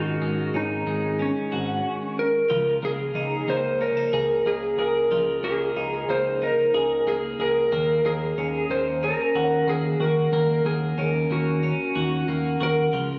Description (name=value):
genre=dream pop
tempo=92 BPM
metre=4/4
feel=straight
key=Db major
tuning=A4 = 440 Hz
part: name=electric slide guitar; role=melody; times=0.0-13.2 s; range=Db4 to C5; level=-26 LUFS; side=equal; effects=none
part: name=twelve-string electric guitar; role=arpeggios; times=0.0-13.2 s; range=Eb3 to Ab4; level=-30 LUFS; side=equal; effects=subtle chorus, delay
part: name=fat analog bass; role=bass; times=0.0-13.2 s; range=Ab1 to Eb2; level=-30 LUFS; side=equal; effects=none
room=moderate lush hall reverb, RT60 2.5 s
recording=recorded on a phone in the room, studio reverb, compression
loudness=-24 LUFS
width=mono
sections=0.0-2.5 A section; 2.5-13.2 B section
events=none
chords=0.0 Ab7sus4; 2.5 Db69; 7.7 Ebm7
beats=0.55 1.20 1.85 | 2.50 3.15 3.81 4.46 | 5.11 5.76 6.41 7.07 | 7.72 8.37 9.02 9.68 | 10.33 10.98 11.63 12.28 | 12.94